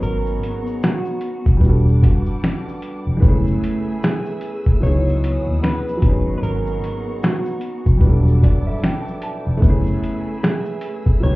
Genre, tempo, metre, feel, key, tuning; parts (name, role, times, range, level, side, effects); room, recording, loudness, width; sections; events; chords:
lo-fi hip hop; 75 BPM; 4/4; swing 59% on 16ths; A4 = 436 Hz
clean electric guitar; melody; 0.0-11.4 s; F#4 to C#5; -27 LUFS; right 2 dB
warm upright piano; accompaniment; 0.0-11.4 s; F#3 to A5; -25 LUFS; right 1 dB
warm studio string section; sustained chords; 0.0-11.4 s; G3 to E6; -32 LUFS; left 3 dB
vintage muted fingered electric bass; bass; 0.0-11.4 s; E1 to D#2; -17 LUFS; equal
lo-fi sampler-style drum kit; drums; 0.0-11.4 s; finger snaps, hi-hat, kick drum, shaker, snare drum; -16 LUFS; equal
light reverb; heard muffled through a wall, cassette tape, club reverb, EQ; -16 LUFS; side -20 dB against mid
0.0-11.4 A section
upright piano fill 8.0-9.6
0.0 G#m11; 1.6 Em11; 3.2 F#m11; 4.8 C#m11; 6.0 G#m11; 8.0 Em11; 9.6 F#m11